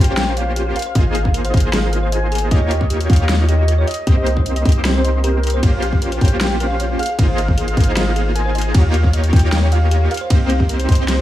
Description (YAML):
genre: future bass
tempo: 154 BPM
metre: 4/4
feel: half-time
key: unclear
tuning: A4 = 444 Hz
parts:
  - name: warm velvety synth lead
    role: melody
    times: 0.0-11.2 s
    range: Bb4 to Ab5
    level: -26 LUFS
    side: equal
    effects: chorus, sidechain pumping, digital delay
  - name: thumb-piano-like synth pluck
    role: arpeggios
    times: 0.0-11.2 s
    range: G4 to Eb5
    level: -29 LUFS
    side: right 2 dB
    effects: chorus, cassette tape, sidechain pumping, digital delay
  - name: supersaw stab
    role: riff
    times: 0.0-11.2 s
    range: Bb3 to Db5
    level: -22 LUFS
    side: equal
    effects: sidechain pumping
  - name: warm 808-style bass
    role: bass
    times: 0.0-11.2 s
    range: Ab1 to Eb2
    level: -18 LUFS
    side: equal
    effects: sidechain pumping
  - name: dubstep drum kit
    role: drums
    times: 0.0-11.2 s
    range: hi-hat, ride cymbal, snare drum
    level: -24 LUFS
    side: left 1 dB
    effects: none
  - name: electronic kick drum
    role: drums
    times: 1.0-11.0 s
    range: none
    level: -14 LUFS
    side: equal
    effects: none
room: little or no reverb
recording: small room ambience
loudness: -14 LUFS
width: side -14 dB against mid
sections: 0.0-11.2 A section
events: none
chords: 0.0 Bbm69; 0.8 Ab69; 2.5 Eb9; 3.9 Cm7; 5.6 Bbm69; 7.0 Ab69; 8.7 Eb9; 10.1 Cm7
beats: 0.17 0.56 | 0.95 1.34 1.73 2.12 | 2.51 2.90 3.29 3.68 | 4.07 4.46 4.85 5.24 | 5.63 6.02 6.41 6.80 | 7.19 7.58 7.97 8.36 | 8.74 9.13 9.53 9.91 | 10.30 10.69 11.08